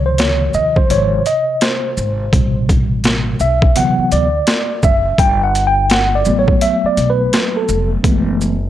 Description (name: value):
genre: hip hop, jazz-hop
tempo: 84 BPM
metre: 4/4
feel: swing 60% on 16ths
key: unclear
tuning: A4 = 443 Hz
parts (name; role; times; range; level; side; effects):
- mellow tine electric piano; accompaniment; 0.0-8.5 s; B2 to G5; -15 LUFS; equal; medium stereo tremolo
- upright bass; bass; 0.0-8.7 s; F1 to D#2; -19 LUFS; equal; transformer saturation
- boom bap sampler-style drum kit; drums; 0.2-8.6 s; hi-hat, kick drum, shaker, snare drum; -15 LUFS; equal; overdrive
room: little or no reverb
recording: dry, gritty hardware recording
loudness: -12 LUFS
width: side -12 dB against mid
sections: 0.0-8.7 A section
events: tine electric piano solo 0.0-8.7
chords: 0.0 C#maj9; 2.3 Am9; 3.8 D13; 5.2 Gmaj9; 8.0 F#m11